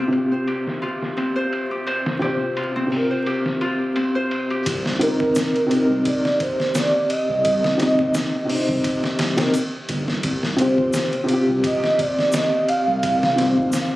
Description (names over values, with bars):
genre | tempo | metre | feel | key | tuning
trip hop | 86 BPM | 4/4 | swing 55% on 16ths | C minor | A4 = 440 Hz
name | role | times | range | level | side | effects
felt-muted upright piano | accompaniment | 0.0-14.0 s | C3 to Eb5 | -22 LUFS | equal | tremolo, vintage 12-bit sampler grit, low-pass filter, tape echo
Celtic harp | arpeggios | 0.0-7.0 s | C4 to C5 | -24 LUFS | left 1 dB | tape echo
trip hop sampler-style drum kit | drums | 0.1-13.9 s | hi-hat, kick drum, ride cymbal, snare drum | -26 LUFS | equal | low-pass filter on cymbals, low-pass filter on snare, low-pass filter on hats, low-pass filter on kick
dark detuned saw bass | bass | 4.7-13.7 s | G1 to Eb2 | -26 LUFS | equal | none
pure breathy sine lead | melody | 5.0-14.0 s | Bb4 to F5 | -21 LUFS | right 1 dB | analog chorus, tape echo
tube shaker | percussion | 5.4-13.9 s | none | -35 LUFS | right 1 dB | none
room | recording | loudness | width
light reverb | recorded on a phone in the room, club reverb, vinyl crackle, compression | -18 LUFS | side -17 dB against mid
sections
0.0-4.7 A section; 4.7-14.0 B section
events
filter sweep on felt piano 0.0-4.7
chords
0.0 Fsus2/C; 4.7 Cm7; 10.2 Fsus2/C